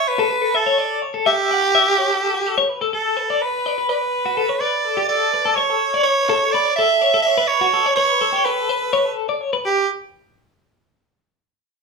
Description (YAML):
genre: rock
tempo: 251 BPM (eighths)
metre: 7/8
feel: straight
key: G lydian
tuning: A4 = 440 Hz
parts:
  - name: raspy soprano saxophone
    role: melody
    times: 0.0-9.9 s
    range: G4 to E5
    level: -18 LUFS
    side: right 4 dB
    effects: slapback echo
  - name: twelve-string electric guitar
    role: arpeggios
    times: 0.0-9.9 s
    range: F#4 to F#5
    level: -20 LUFS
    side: left 6 dB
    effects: tremolo
room: wet studio reverb, RT60 0.8 s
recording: small room ambience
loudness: -16 LUFS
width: side -4 dB against mid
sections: 0.0-2.9 A section; 2.9-9.7 B section; 9.7-11.3 C section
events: none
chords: 0.0 A7(no3); 2.9 Gadd9(#11) (rootless); 9.7 N.C.